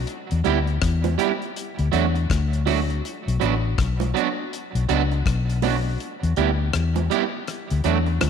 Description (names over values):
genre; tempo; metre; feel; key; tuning
roots reggae; 81 BPM; 4/4; swing 61% on 16ths; B minor; A4 = 439 Hz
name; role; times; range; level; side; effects
vintage muted fingered electric bass; bass; 0.0-8.3 s; A1 to E2; -22 LUFS; left 2 dB; none
damped 70s drum kit; drums; 0.1-8.3 s; hi-hat, kick drum, rim click; -28 LUFS; left 5 dB; none
electric guitar at the edge of break-up; accompaniment; 0.4-8.1 s; F#3 to G4; -24 LUFS; right 9 dB; analog chorus, tape echo
bongos; percussion; 0.4-8.3 s; none; -32 LUFS; right 8 dB; none
room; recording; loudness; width
moderate echo chamber reverb, RT60 1.9 s, small room ambience; 1960s-style stereo; -20 LUFS; side -7 dB against mid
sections
0.0-8.3 A section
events
kick muted 6.0-8.3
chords
0.1 Em; 1.6 D; 3.0 Bm; 6.0 Em; 7.5 D